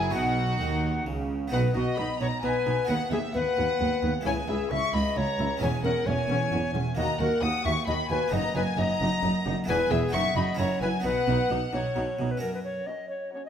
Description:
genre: classical, baroque-style concerto movement with solo episodes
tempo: 132 BPM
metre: 3/4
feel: straight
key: B major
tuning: A4 = 441 Hz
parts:
  - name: mellow alto recorder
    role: melody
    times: 0.0-13.5 s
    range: F#4 to G#5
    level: -29 LUFS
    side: left 2 dB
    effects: none
  - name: rich chamber violin section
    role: melody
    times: 0.0-13.5 s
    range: D#5 to D#6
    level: -35 LUFS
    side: left 4 dB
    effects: none
  - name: rich chamber violin section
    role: second line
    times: 0.0-13.5 s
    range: F#4 to D#6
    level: -34 LUFS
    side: left 2 dB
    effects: none
  - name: dark chamber viola section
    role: accompaniment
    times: 0.0-13.5 s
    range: B3 to F#4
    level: -36 LUFS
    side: equal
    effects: none
  - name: harpsichord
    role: accompaniment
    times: 0.0-13.5 s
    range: C#2 to A#4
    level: -33 LUFS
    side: equal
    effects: none
  - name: dark chamber cello section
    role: bass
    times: 0.0-12.8 s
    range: C#2 to D#3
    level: -32 LUFS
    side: right 3 dB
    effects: none
  - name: rich chamber double bass section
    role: bass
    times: 0.0-12.3 s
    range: E1 to D#2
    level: -32 LUFS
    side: right 3 dB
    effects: none
room: moderate recital hall reverb, RT60 1.4 s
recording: none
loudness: -24 LUFS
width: side -8 dB against mid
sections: 0.0-1.5 A section; 1.5-12.4 A section; 12.4-13.5 B section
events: none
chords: 0.1 B; 2.9 B/D#; 4.3 C#m; 5.6 C#m/E; 7.0 D#m; 8.3 D#m/F#; 9.7 E; 10.1 B/F#; 10.6 F#7; 11.0 B; 12.4 F#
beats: | 0.15 0.61 1.06 | 1.52 1.98 2.44 | 2.89 3.35 3.80 | 4.25 4.71 5.16 | 5.61 6.07 6.52 | 6.97 7.42 7.88 | 8.33 8.78 9.23 | 9.68 10.13 10.59 | 11.05 11.51 11.96 | 12.42 12.88 13.34

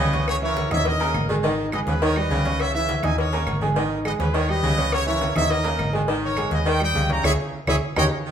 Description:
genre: latin, salsa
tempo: 207 BPM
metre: 4/4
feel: straight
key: unclear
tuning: A4 = 440 Hz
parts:
  - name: bright trumpet section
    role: melody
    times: 0.0-8.0 s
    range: G#4 to A#5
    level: -25 LUFS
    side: equal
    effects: none
  - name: clear saxophone section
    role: second line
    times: 0.0-8.3 s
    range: C#3 to D#3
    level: -29 LUFS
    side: right 2 dB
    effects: none
  - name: bright upright piano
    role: accompaniment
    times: 0.0-8.1 s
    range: D#3 to D#6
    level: -26 LUFS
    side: right 2 dB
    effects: none
  - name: hollow-body short-scale fingered electric bass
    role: bass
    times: 0.0-8.1 s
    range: G#1 to D#2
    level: -26 LUFS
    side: equal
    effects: none
  - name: congas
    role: percussion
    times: 0.1-8.0 s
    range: none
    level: -28 LUFS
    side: left 1 dB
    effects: none
  - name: cowbell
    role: percussion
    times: 0.1-8.0 s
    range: none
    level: -32 LUFS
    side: left 5 dB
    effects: none
  - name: claves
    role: percussion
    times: 0.3-8.0 s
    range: none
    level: -37 LUFS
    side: right 4 dB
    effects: none
room: wet large studio reverb, RT60 1.4 s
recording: minimal, uncompressed stereo recording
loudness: -20 LUFS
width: side -8 dB against mid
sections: 0.0-8.3 A section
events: band accent 7.2-8.3; drum fill 7.5-8.3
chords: 0.3 C#m; 0.9 D#5; 1.4 G#m; 2.0 D#7; 2.6 C#m; 3.2 D#5; 3.8 G#m; 4.3 D#7; 4.9 C#m; 5.5 D#5; 6.1 G#m; 6.7 D#7; 7.2 C#m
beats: | 0.28 0.57 0.86 1.15 | 1.44 1.73 2.02 2.31 | 2.60 2.89 3.18 3.47 | 3.76 4.05 4.34 4.63 | 4.92 5.21 5.50 5.79 | 6.08 6.37 6.66 6.95 | 7.25 7.54 7.83 8.12

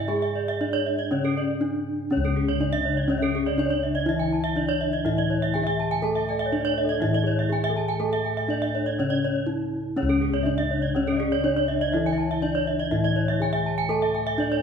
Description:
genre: Balinese gamelan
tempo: 122 BPM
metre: 4/4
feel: straight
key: C# pelog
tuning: A4 = 442 Hz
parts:
  - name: gamelan-type bronze metallophone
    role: melody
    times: 0.0-14.6 s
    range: C#4 to A4-20c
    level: -27 LUFS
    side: equal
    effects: none
  - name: gamelan-type bronze metallophone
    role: accompaniment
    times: 0.0-14.6 s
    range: C#3 to A3-20c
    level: -32 LUFS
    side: left 3 dB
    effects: none
  - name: gamelan-type bronze metallophone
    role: arpeggios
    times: 0.0-14.6 s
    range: A4-20c to G#5-30c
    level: -29 LUFS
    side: right 5 dB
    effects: none
  - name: gamelan-type bossed gongs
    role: bass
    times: 0.0-14.6 s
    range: C#2 to A4-20c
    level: -28 LUFS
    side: left 1 dB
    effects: none
  - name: gamelan-type bronze metallophone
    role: arpeggios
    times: 0.1-14.5 s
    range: G#4-30c to A5-20c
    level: -31 LUFS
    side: left 2 dB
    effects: none
  - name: worn celesta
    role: second line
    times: 2.9-14.6 s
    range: G#4-30c to E5-30c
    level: -33 LUFS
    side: left 1 dB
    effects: none
room: wet large studio reverb, RT60 1.5 s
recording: band playing live in one room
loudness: -22 LUFS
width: side -7 dB against mid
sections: 0.0-2.1 A section; 2.1-14.6 B section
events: break 1.4-2.1, 9.2-10.0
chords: none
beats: | 0.09 0.60 1.11 1.61 | 2.11 2.60 3.09 3.58 | 4.07 4.57 5.06 5.55 | 6.04 6.53 7.02 7.51 | 8.01 8.50 8.99 9.48 | 9.97 10.46 10.95 11.45 | 11.94 12.43 12.92 13.41 | 13.90 14.40

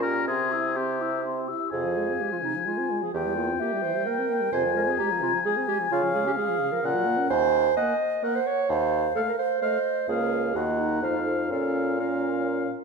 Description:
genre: quick classical-period movement for wind quintet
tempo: 129 BPM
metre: 3/4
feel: straight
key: F minor, Bb minor from 7.3 s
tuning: A4 = 440 Hz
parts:
  - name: mellow hollow concert flute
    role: melody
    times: 0.0-12.7 s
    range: C5 to E6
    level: -31 LUFS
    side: left 9 dB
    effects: none
  - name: warm oboe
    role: second line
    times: 0.0-12.7 s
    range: G4 to Ab5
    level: -30 LUFS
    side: left 5 dB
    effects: none
  - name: mellow French horn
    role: accompaniment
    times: 0.0-12.7 s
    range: C3 to G4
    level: -33 LUFS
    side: equal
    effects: none
  - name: warm clarinet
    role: accompaniment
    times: 0.0-12.7 s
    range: C4 to Eb5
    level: -28 LUFS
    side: right 7 dB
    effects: none
  - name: clear bassoon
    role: bass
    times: 0.0-12.7 s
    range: Db2 to Db3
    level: -30 LUFS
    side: right 2 dB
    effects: none
room: wet scoring stage reverb, RT60 1.6 s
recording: minimal, uncompressed stereo recording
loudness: -23 LUFS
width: side -4 dB against mid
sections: 0.0-1.7 A section; 1.7-12.8 B section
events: none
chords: 0.3 C; 1.7 Fm; 3.1 C7/E; 4.5 Fm; 5.9 Db; 6.8 Gb/Bb; 7.3 Cm7b5/Eb; 8.7 F7/Eb; 10.1 Bbm/Db; 10.6 Ebm; 11.0 F7; 11.5 Bbm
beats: | 0.28 0.77 1.25 | 1.73 2.20 2.67 | 3.14 3.60 4.07 | 4.53 5.00 5.46 | 5.92 6.38 6.84 | 7.31 7.77 8.23 | 8.69 9.15 9.62 | 10.09 10.55 11.03 | 11.51 12.00 12.48

